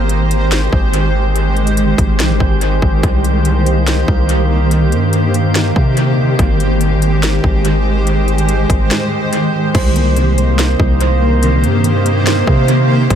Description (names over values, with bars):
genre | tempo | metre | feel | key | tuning
hip hop, atmospheric cloud-rap | 143 BPM | 4/4 | half-time | C minor | A4 = 440 Hz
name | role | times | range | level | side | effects
granular cloud pad | sustained chords | 0.0-13.2 s | Eb3 to C5 | -16 LUFS | equal | built-in reverb, sidechain pumping
long sustained 808-style bass | bass | 0.0-13.2 s | Ab1 to C3 | -14 LUFS | equal | none
drifting glass-harmonics texture | texture | 0.0-13.2 s | Ab3 to C5 | -24 LUFS | right 1 dB | chorus, built-in reverb
trap drum kit | drums | 0.1-13.2 s | crash cymbal, hi-hat, kick drum, snare drum | -17 LUFS | equal | overdrive, dub echo
soft electric-piano-like synth keys | arpeggios | 9.7-13.2 s | C3 to C5 | -18 LUFS | right 3 dB | chorus, low-pass filter, dub echo
room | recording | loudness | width
digital ambience | echo-heavy mix | -11 LUFS | side -9 dB against mid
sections
0.0-9.7 A section; 9.7-13.2 B section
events
kick muted 8.9-9.7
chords
0.0 Abmaj7; 3.0 Cm7; 6.4 Abmaj7; 9.7 Cm7